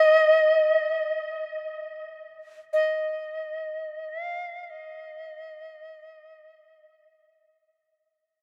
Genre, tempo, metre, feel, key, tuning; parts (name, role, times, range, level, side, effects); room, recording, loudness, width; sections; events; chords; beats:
world meditative; free time; A4 = 441 Hz
bright Native American-style cedar flute; melody; 0.0-7.1 s; Eb5 to F5; -25 LUFS; equal; diffuse ambient delay
wet huge ambient reverb, RT60 6.6 s; -25 LUFS; mono
0.0-8.0 A section
fade-out 0.0-8.0
free time